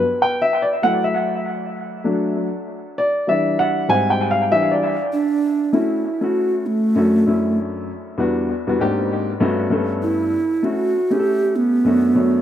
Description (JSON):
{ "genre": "hip hop", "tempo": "98 BPM", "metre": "4/4", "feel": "swing 58% on 16ths", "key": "unclear", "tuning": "A4 = 436 Hz", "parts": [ { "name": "dark upright piano", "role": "accompaniment", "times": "0.0-12.4 s", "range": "E2 to G#5", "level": "-19 LUFS", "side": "left 1 dB", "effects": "dub echo" }, { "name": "breathy bright bass ocarina", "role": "melody", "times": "5.1-12.4 s", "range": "A3 to G4", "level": "-18 LUFS", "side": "right 2 dB", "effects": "dub echo" } ], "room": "light reverb, small room ambience", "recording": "echo-heavy mix", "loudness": "-17 LUFS", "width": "side -10 dB against mid", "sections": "0.0-5.7 A section; 5.7-12.4 B section", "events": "upright piano solo 0.0-5.7", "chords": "0.0 G; 0.8 F#m7; 2.1 D/F#; 3.3 Em9; 3.9 G#maj7; 4.5 Em7; 5.7 F#m7; 7.0 Dmaj9/F#; 8.2 Em9; 8.8 G#maj9#11; 9.4 Gmaj9#11; 10.6 F#m7; 11.9 Bm9/F#" }